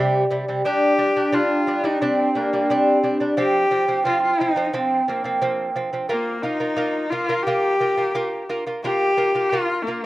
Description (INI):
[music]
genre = mongolian traditional, Mongolian folk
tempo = 88 BPM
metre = 4/4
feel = straight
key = unclear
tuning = A4 = 440 Hz
[part]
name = clear horsehead fiddle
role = melody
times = 0.0-10.1 s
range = Bb3 to G4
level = -22 LUFS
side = left 1 dB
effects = slapback echo
[part]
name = lute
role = arpeggios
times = 0.0-10.0 s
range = C3 to F4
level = -21 LUFS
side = right 1 dB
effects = none
[sound]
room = little or no reverb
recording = recorded outdoors, with no room sound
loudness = -18 LUFS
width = side -17 dB against mid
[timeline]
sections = 0.0-10.1 A section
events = none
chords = 0.0 C5; 0.6 G5; 3.4 F5; 6.1 Bb5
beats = | 0.64 1.32 2.01 2.69 | 3.37 4.05 4.74 5.42 | 6.10 6.79 7.47 8.15 | 8.83 9.52